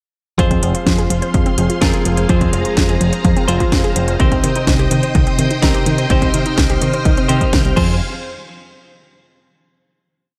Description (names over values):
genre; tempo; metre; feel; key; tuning
italo disco; 126 BPM; 4/4; straight; F minor; A4 = 440 Hz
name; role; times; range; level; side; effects
string machine, full ensemble; sustained chords; 0.4-8.0 s; Ab4 to F6; -25 LUFS; equal; ensemble chorus
unison pluck; arpeggios; 0.4-8.0 s; Eb3 to C5; -24 LUFS; equal; digital delay
direct-recorded clean electric guitar; stabs; 0.4-7.9 s; C3 to C5; -23 LUFS; equal; digital delay
fingered electric bass with an envelope filter; bass; 0.4-8.0 s; F1 to C3; -21 LUFS; equal; none
electronic kick drum; drums; 0.4-7.9 s; none; -20 LUFS; equal; overdrive
house drum kit; drums; 0.4-7.9 s; crash cymbal, hi-hat, snare drum; -24 LUFS; equal; overdrive
room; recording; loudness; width
light reverb; none; -15 LUFS; mono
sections
0.4-8.0 verse; 8.0-9.9 final hit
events
none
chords
0.4 Fm; 4.2 Cm; 7.8 Fm; 8.0 N.C.